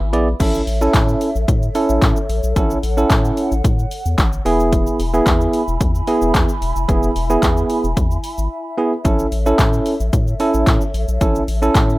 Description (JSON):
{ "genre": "dance-pop", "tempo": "111 BPM", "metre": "4/4", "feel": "straight", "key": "A major", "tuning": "A4 = 441 Hz", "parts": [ { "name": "mellow hollow large flute ensemble", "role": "sustained chords", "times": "0.0-12.0 s", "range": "E4 to B5", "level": "-26 LUFS", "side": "left 1 dB", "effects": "sidechain pumping" }, { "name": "round analog bass", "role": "bass", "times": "0.0-12.0 s", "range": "E1 to A2", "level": "-20 LUFS", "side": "equal", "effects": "sidechain pumping" }, { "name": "bell-like tine electric piano", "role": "accompaniment", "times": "0.1-12.0 s", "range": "B3 to D5", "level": "-18 LUFS", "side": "right 2 dB", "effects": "sidechain pumping" }, { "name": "punchy analog drum machine", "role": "drums", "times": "0.1-12.0 s", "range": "crash cymbal, handclaps, hi-hat, kick drum, shaker", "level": "-17 LUFS", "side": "equal", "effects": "none" } ], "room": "little or no reverb", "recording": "rough home demo mix", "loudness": "-14 LUFS", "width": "side -19 dB against mid", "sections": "0.4-12.0 A section", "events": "break 0.0-0.4; silent gap 8.5-9.1", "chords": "0.4 A; 4.5 E; 9.1 A", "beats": "| 0.40 0.94 1.48 2.02 | 2.56 3.10 3.64 4.18 | 4.72 5.27 5.81 6.35 | 6.89 7.43 7.97 8.51 | 9.05 9.59 10.13 10.67 | 11.21 11.75" }